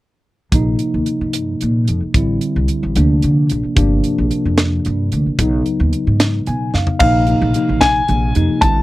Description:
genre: electric jazz fusion.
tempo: 74 BPM (dotted quarters).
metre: 6/8.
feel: straight.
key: Bb mixolydian.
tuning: A4 = 440 Hz.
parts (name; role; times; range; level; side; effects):
bright tine electric piano; accompaniment; 0.5-8.8 s; C3 to Ab5; -18 LUFS; equal; medium stereo tremolo, lush chorus.
upright bass; bass; 0.5-8.8 s; G1 to D3; -17 LUFS; equal; none.
tight funk drum kit; drums; 0.5-8.7 s; crash cymbal, hi-hat, kick drum, snare drum, toms; -18 LUFS; equal; none.
warm baby grand piano; melody; 7.0-8.8 s; F5 to A5; -16 LUFS; left 2 dB; none.
room: little or no reverb.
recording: dry, close 1970s-style studio recording.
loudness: -14 LUFS.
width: side -17 dB against mid.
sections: 0.5-7.0 A section; 7.0-8.8 B section.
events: tine electric piano fill 6.2-7.0; drum fill 6.7.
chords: 0.5 Bbsus4; 2.2 Am7; 3.0 Bbadd9; 3.8 Gm7; 5.4 Badd9; 7.0 Bb7sus4.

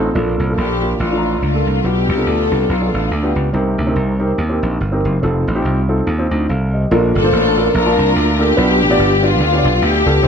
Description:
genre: uptempo gospel.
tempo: 142 BPM.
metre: 4/4.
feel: swing 58% on 8ths.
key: Bb major.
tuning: A4 = 441 Hz.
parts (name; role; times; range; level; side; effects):
dark upright piano; accompaniment; 0.0-10.3 s; Bb2 to Bb5; -18 LUFS; equal; none.
slap bass; bass; 0.0-10.3 s; F1 to Eb2; -17 LUFS; right 1 dB; none.
warm studio string section; melody; 0.6-3.5, 7.2-10.3 s; A3 to Bb4; -17 LUFS; left 3 dB; none.
room: moderate large studio reverb, RT60 1.3 s.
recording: none.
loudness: -13 LUFS.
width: side -7 dB against mid.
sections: 0.1-6.9 A section; 6.9-10.3 B section.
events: none.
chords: 0.1 Bbmaj7; 1.8 G7/B; 3.5 Cm7; 5.2 F7; 6.9 Bbmaj7; 8.6 G7.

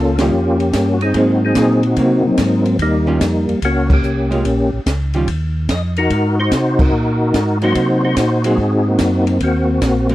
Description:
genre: soul jazz organ trio.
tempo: 145 BPM.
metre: 4/4.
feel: swing 67% on 8ths.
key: unclear.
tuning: A4 = 440 Hz.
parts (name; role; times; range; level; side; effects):
percussive tonewheel organ; melody; 0.0-10.1 s; Gb3 to Eb5; -16 LUFS; left 1 dB; slow rotary speaker, chorus vibrato, slapback echo.
mellow tonewheel organ; bass; 0.0-10.1 s; Bb1 to C3; -18 LUFS; equal; overdrive, chorus vibrato, slow rotary speaker.
archtop guitar, miked and amplified; accompaniment; 0.2-10.1 s; Eb3 to F4; -19 LUFS; right 2 dB; none.
open jazz drum kit; drums; 0.2-10.1 s; crash cymbal, hi-hat, kick drum, ride cymbal, snare drum; -20 LUFS; equal; none.
room: light reverb.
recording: dry, close 1970s-style studio recording.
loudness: -13 LUFS.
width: side -16 dB against mid.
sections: 0.0-10.1 A section.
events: band accent 0.1, 3.8, 6.7.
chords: 0.0 Eb9; 1.1 Ab9; 2.8 Eb9; 4.4 Bbm; 5.3 Ebsus2; 6.1 Ab9.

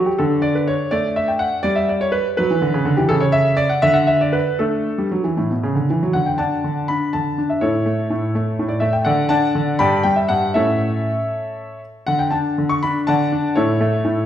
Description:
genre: classical-period piano sonatina.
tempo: 76-84 BPM (dotted quarters).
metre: 6/8.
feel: rubato.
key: D major.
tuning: A4 = 440 Hz.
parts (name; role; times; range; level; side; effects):
clear concert grand piano; solo; 0.0-14.3 s; G2 to C#6; -16 LUFS; equal; none.
room: wet recital hall reverb, RT60 1.4 s.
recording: heard from further back in the room.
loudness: -16 LUFS.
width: side -10 dB against mid.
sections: 0.0-6.2 A section; 6.2-14.3 B section.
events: none.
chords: 0.2 D5; 1.6 Em7/G; 3.1 N.C.; 4.6 Asus4; 5.4 A; 6.2 D; 7.6 A; 9.1 D; 9.8 G5; 10.6 A; 12.1 D; 13.6 A.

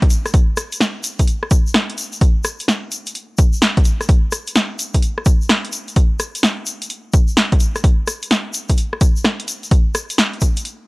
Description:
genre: UK garage.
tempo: 128 BPM.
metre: 4/4.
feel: swing 65% on 16ths.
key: none.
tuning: none.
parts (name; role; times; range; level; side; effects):
electronic kick drum; drums; 0.0-10.5 s; none; -13 LUFS; equal; none.
punchy analog drum machine; drums; 0.0-10.8 s; hi-hat, rim click, snare drum; -18 LUFS; equal; none.
egg shaker; percussion; 0.1-10.8 s; none; -28 LUFS; left 2 dB; none.
room: little or no reverb.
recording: dry, gritty hardware recording, cassette tape.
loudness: -15 LUFS.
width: side -24 dB against mid.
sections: 0.0-10.9 A section.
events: none.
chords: none.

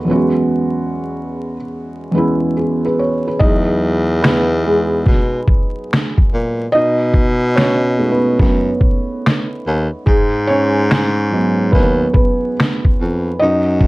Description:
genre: lo-fi hip hop.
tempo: 72 BPM.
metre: 4/4.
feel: swing 66% on 16ths.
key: E major.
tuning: A4 = 440 Hz.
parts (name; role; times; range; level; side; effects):
felt-muted upright piano; accompaniment; 0.0-13.9 s; E2 to D#5; -17 LUFS; right 1 dB; cassette tape, low-pass filter.
breathy baritone saxophone; bass; 3.4-13.9 s; D#2 to B2; -17 LUFS; equal; none.
lo-fi sampler-style drum kit; drums; 3.4-13.9 s; finger snaps, kick drum, snare drum; -14 LUFS; equal; none.
room: moderate studio reverb, RT60 0.6 s.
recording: vinyl crackle.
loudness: -13 LUFS.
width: side -21 dB against mid.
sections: 0.0-3.4 A section; 3.4-13.9 B section.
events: break 0.1-3.4; hi-hats muted 3.4-13.9; felt piano solo 3.4-13.9.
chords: 0.1 E69; 3.4 Emaj9; 6.7 B13; 10.1 G#m7.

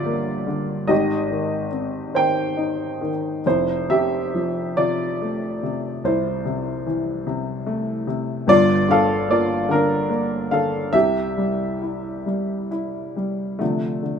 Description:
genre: classical, lyrical solo piano.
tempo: 44-50 BPM (dotted quarters).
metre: 6/8.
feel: rubato.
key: unclear.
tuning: A4 = 440 Hz.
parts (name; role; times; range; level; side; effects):
dark baby grand piano; solo; 0.0-14.2 s; F1 to G5; -20 LUFS; equal; none.
room: light reverb.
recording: none.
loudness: -19 LUFS.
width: side -7 dB against mid.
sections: 0.0-13.6 A section.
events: none.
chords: 0.0 Gm7; 0.9 Abmaj7; 3.5 Fmaj9; 8.5 Gm7; 10.9 C; 13.6 Dm7.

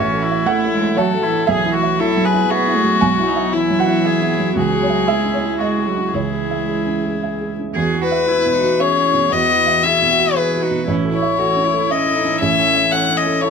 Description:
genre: neoclassical piano and strings.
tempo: 116 BPM.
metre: 3/4.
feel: rubato.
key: E major.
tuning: A4 = 443 Hz.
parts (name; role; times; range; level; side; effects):
warm violin; melody; 0.0-13.5 s; E4 to F#5; -18 LUFS; left 6 dB; none.
rich cello; second line; 0.0-13.5 s; E3 to G#4; -23 LUFS; right 7 dB; none.
felt-muted upright piano; accompaniment; 0.0-13.5 s; A1 to G#5; -21 LUFS; right 3 dB; none.
rich viola; accompaniment; 0.0-13.5 s; C#4 to B4; -24 LUFS; right 2 dB; none.
glassy FM pad; sustained chords; 0.0-13.5 s; E3 to C#5; -27 LUFS; right 1 dB; ensemble chorus, built-in reverb.
room: light reverb.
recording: none.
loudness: -14 LUFS.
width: side -6 dB against mid.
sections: 0.0-7.8 A section; 7.8-13.5 B section.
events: none.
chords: 0.0 A; 1.5 Esus2/B; 4.6 C#m; 7.8 Esus2; 10.9 A.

